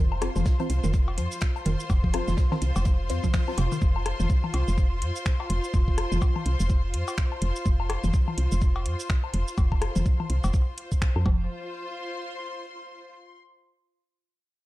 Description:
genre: minimal techno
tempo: 125 BPM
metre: 4/4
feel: swing 59% on 16ths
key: unclear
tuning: A4 = 440 Hz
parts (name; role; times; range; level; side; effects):
- woody FM bass; bass; 0.0-11.5 s; F1 to F2; -26 LUFS; equal; tube saturation, sidechain pumping
- rich symphonic string section; texture; 0.0-13.4 s; F4 to C6; -35 LUFS; left 1 dB; sidechain pumping
- booming analog drum machine; percussion; 0.1-11.4 s; cowbell, rim click, toms, woodblock; -33 LUFS; left 4 dB; studio reverb, tape echo
- filtered dub chord stab; stabs; 0.2-3.5 s; C4 to C5; -35 LUFS; left 1 dB; phaser, wide subtle chorus, tape echo
- garage drum kit; drums; 0.2-11.1 s; finger snaps, hi-hat, shaker; -36 LUFS; right 1 dB; studio reverb
- natural country drum kit; drums; 0.2-3.7 s; hi-hat, snare drum; -46 LUFS; left 2 dB; sidechain pumping on hats, high-pass filter on hats, studio reverb, high-pass filter on snare, high-pass filter on room
- hollow square pluck; riff; 0.4-3.7, 11.3-11.5 s; C3 to F3; -33 LUFS; right 2 dB; chorus, sidechain pumping, tape echo
- electronic kick drum; drums; 0.5-11.4 s; none; -23 LUFS; equal; studio reverb
room: little or no reverb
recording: dark, warm production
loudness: -23 LUFS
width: side -17 dB against mid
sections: 0.0-11.5 A section; 11.5-13.4 B section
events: none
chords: 0.0 F5

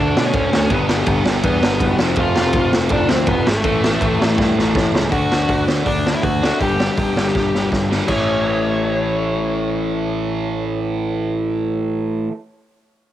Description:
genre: punk rock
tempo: 162 BPM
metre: 4/4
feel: straight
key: A mixolydian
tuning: A4 = 440 Hz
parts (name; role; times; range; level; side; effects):
- dark smooth lead guitar; melody; 0.0-11.8 s; A3 to G5; -22 LUFS; left 1 dB; overdrive, cassette tape, analog delay
- overdriven electric guitar; riff; 0.0-12.3 s; F2 to D4; -22 LUFS; left 6 dB; cassette tape
- sludgy distorted guitar; riff; 0.0-12.3 s; F2 to D4; -24 LUFS; right 7 dB; overdrive, cassette tape
- overdriven picked electric bass; bass; 0.0-12.3 s; F1 to B2; -23 LUFS; right 1 dB; none
- raw garage drum kit; drums; 0.2-8.2 s; crash cymbal, hi-hat, kick drum, ride cymbal, snare drum; -20 LUFS; right 1 dB; cassette tape
room: small room ambience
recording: home recording on cassette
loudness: -16 LUFS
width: side -12 dB against mid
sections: 0.0-5.1 A section; 5.1-8.1 B section; 8.1-11.1 C section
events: drum fill 4.4-5.1, 7.4-8.1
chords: 0.0 D5; 0.7 G; 2.0 F; 3.7 A5; 5.1 D; 6.6 G5; 8.1 A

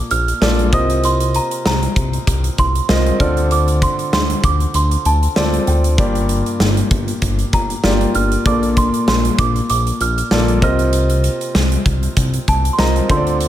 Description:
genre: 1980s-style pop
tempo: 97 BPM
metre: 4/4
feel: swing 55% on 16ths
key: unclear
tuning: A4 = 440 Hz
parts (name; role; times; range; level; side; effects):
- small celesta; melody; 0.0-13.5 s; G5 to F6; -21 LUFS; right 3 dB; ping-pong delay
- clear concert grand piano; accompaniment; 0.0-13.5 s; G2 to Eb5; -20 LUFS; equal; none
- chorused synth bass; bass; 0.1-13.5 s; G1 to D2; -18 LUFS; equal; none
- big rock drum kit; drums; 0.1-13.5 s; hi-hat, kick drum, snare drum; -19 LUFS; equal; gated reverb
room: light reverb, studio reverb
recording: none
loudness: -14 LUFS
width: side -12 dB against mid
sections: 0.0-13.5 A section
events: none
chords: 0.0 Bbmaj7; 0.7 F7sus4/C; 3.2 Dm7; 6.0 Gm7; 8.5 Bbmaj7; 10.6 F7sus4/C

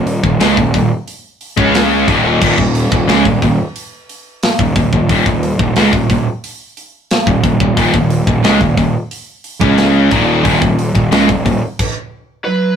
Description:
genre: heavy metal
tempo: 90 BPM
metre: 4/4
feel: straight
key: unclear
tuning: A4 = 440 Hz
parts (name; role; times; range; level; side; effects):
- distorted electric guitar; riff; 0.0-11.6 s; Eb2 to Db4; -16 LUFS; left 4 dB; overdrive
- sludgy distorted guitar; riff; 0.0-11.6 s; Eb2 to Db4; -15 LUFS; right 4 dB; overdrive
- fuzz picked electric bass; bass; 0.0-11.6 s; Eb1 to Db2; -17 LUFS; equal; overdrive
- tight metal drum kit; drums; 0.1-11.9 s; crash cymbal, hi-hat, kick drum, snare drum; -17 LUFS; equal; none
- lead guitar through a small cranked amp; melody; 12.4-12.8 s; Cb5; -16 LUFS; right 6 dB; overdrive
- high-gain lead guitar; second line; 12.5-12.8 s; Gb3; -15 LUFS; right 1 dB; distortion
room: moderate small room reverb, RT60 0.5 s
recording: rough rehearsal-room recording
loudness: -11 LUFS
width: side -8 dB against mid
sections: 0.0-12.8 A section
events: stop 11.8-12.8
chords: 0.0 Eb5

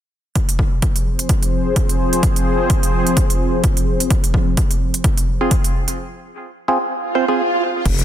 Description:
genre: bass house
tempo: 128 BPM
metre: 4/4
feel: swing 57% on 16ths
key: F minor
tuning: A4 = 440 Hz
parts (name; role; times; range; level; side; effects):
- sweeping resonant pad; sustained chords; 1.1-5.9 s; F3 to C5; -21 LUFS; equal; chorus, sidechain pumping
- big-room dance drum kit; drums; 0.4-8.0 s; crash cymbal, hi-hat; -23 LUFS; right 4 dB; overdrive
- electronic kick drum; drums; 0.4-8.0 s; none; -16 LUFS; equal; overdrive
- percussive organ stab; stabs; 5.4-7.4 s; C4 to C5; -19 LUFS; right 2 dB; chorus, phaser, cassette tape, sidechain pumping, dub echo
- swell; sound effects; 7.0-7.9 s; none; -20 LUFS; right 2 dB; none
- phased detuned saw bass; bass; 7.9-8.0 s; F1; -16 LUFS; equal; phaser, tube saturation, sidechain pumping
room: light reverb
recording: dense, heavily limited modern master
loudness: -15 LUFS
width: side -11 dB against mid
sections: 0.4-7.9 A section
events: break 6.0-7.9; swell 7.0-7.9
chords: 0.4 Fm

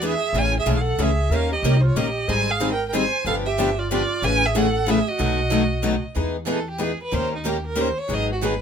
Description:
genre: acoustic string swing (jazz manouche)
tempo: 186 BPM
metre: 3/4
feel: swing 59% on 8ths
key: unclear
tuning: A4 = 440 Hz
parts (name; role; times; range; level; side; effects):
- warm violin; melody; 0.0-8.6 s; D#4 to G#5; -25 LUFS; right 2 dB; none
- bright reedy tenor recorder; second line; 0.0-6.0 s; D#4 to D5; -27 LUFS; right 6 dB; none
- picked steel-string acoustic guitar; accompaniment; 0.0-8.5 s; B2 to A#4; -24 LUFS; left 4 dB; none
- picked steel-string acoustic guitar; accompaniment; 0.0-8.5 s; B2 to B4; -29 LUFS; right 6 dB; none
- upright bass; bass; 0.0-8.6 s; G1 to E2; -24 LUFS; equal; none
room: light reverb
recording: minimal, uncompressed stereo recording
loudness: -19 LUFS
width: side -7 dB against mid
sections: 0.0-6.2 A section; 6.2-8.6 B section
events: violin solo 6.2-8.6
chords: 0.3 Amaj7; 1.3 D#7; 2.3 G#maj7; 3.3 G7; 4.2 Amaj7; 5.2 B7; 6.2 Emaj7; 7.1 D#7; 8.1 G#m7

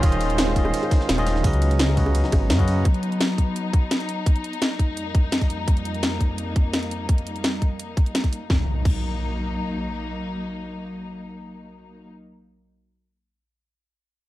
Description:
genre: liquid drum and bass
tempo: 170 BPM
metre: 4/4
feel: straight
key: unclear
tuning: A4 = 441 Hz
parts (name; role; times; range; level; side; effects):
- barky tine electric piano; accompaniment; 0.0-2.9 s; Db3 to Eb5; -26 LUFS; right 1 dB; medium stereo tremolo, tape echo
- dark studio string section; sustained chords; 0.0-12.1 s; F2 to C5; -29 LUFS; left 1 dB; none
- dark detuned saw bass; bass; 0.0-2.8 s; Eb1 to Gb2; -21 LUFS; equal; none
- drum and bass drum kit; drums; 0.0-9.0 s; crash cymbal, hi-hat, snare drum; -26 LUFS; equal; overdrive
- electronic kick drum; drums; 0.0-9.0 s; none; -19 LUFS; equal; overdrive
- jungle sampler-style drum kit; drums; 0.0-2.8 s; hi-hat, ride cymbal, snare drum; -31 LUFS; right 1 dB; high-pass filter on cymbals, high-pass filter on snare, high-pass filter on hats
- bongos; percussion; 0.5-2.4 s; none; -30 LUFS; right 1 dB; none
- impact; sound effects; 8.5-12.8 s; none; -29 LUFS; equal; none
room: digital ambience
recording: dark, warm production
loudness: -20 LUFS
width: side -16 dB against mid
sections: 0.0-8.5 A section; 8.5-11.3 B section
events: none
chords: 0.0 Eb9sus4; 1.4 Db9sus4; 4.8 F9sus4; 8.5 Ebm

